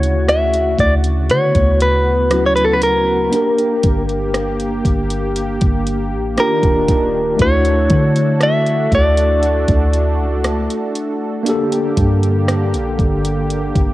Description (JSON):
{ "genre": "contemporary R&B", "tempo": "59 BPM", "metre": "4/4", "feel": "straight", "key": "D major", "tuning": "A4 = 440 Hz", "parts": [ { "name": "direct-recorded clean electric guitar", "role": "melody", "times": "0.0-13.9 s", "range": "A4 to E5", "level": "-16 LUFS", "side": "equal", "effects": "none" }, { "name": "tine electric piano", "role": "accompaniment", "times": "0.0-13.9 s", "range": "C#3 to Bb4", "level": "-21 LUFS", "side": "left 1 dB", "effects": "medium stereo tremolo, cassette tape" }, { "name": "warm analog pad", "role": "sustained chords", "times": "0.0-13.9 s", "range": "C#3 to A4", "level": "-23 LUFS", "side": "equal", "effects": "chorus, tremolo, cassette tape" }, { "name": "soft 808-style bass", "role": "bass", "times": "0.0-13.9 s", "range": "Eb1 to D3", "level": "-18 LUFS", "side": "equal", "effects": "none" }, { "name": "smooth R&B drum kit", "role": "drums", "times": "0.0-13.9 s", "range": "hi-hat, kick drum, rim click", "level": "-19 LUFS", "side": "equal", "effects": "cassette tape" } ], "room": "digital ambience", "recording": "home recording on cassette", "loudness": "-13 LUFS", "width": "side -16 dB against mid", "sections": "0.0-13.9 A section", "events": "tine electric piano fill 13.5-13.9", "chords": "0.0 Dmaj7; 3.3 Gm; 6.4 Ebmaj7; 7.4 Dmaj7; 11.5 Gmadd9" }